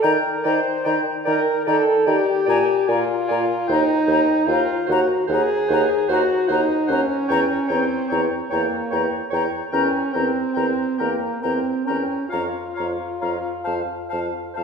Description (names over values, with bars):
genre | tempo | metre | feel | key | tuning
classical, slow romantic movement for wind quintet | 44-51 BPM (dotted quarters) | 6/8 | rubato | unclear | A4 = 440 Hz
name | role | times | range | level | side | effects
concert flute | melody | 0.0-14.6 s | A5 to Bb5 | -28 LUFS | left 7 dB | none
warm oboe | second line | 0.0-14.6 s | F5 to Ab5 | -28 LUFS | left 1 dB | none
clear clarinet | accompaniment | 0.0-14.6 s | Bb4 to D5 | -30 LUFS | right 3 dB | none
warm French horn | accompaniment | 0.0-14.5 s | Bb3 to C5 | -22 LUFS | equal | none
dark bassoon | bass | 0.0-14.6 s | Eb2 to Eb3 | -24 LUFS | right 2 dB | none
room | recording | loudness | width
wet scoring stage reverb, RT60 1.5 s | heard from further back in the room | -18 LUFS | side -6 dB against mid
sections
0.0-14.6 A section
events
none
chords
0.0 Ebmaj7; 2.5 Bb7; 3.7 Eb6; 4.9 Cm7b5/Eb; 7.3 Edim7; 12.3 Bbm/F; 13.7 F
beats
| 0.04 1.26 | 2.48 3.68 | 4.88 6.09 | 7.29 8.50 | 9.73 11.00 | 12.32 13.65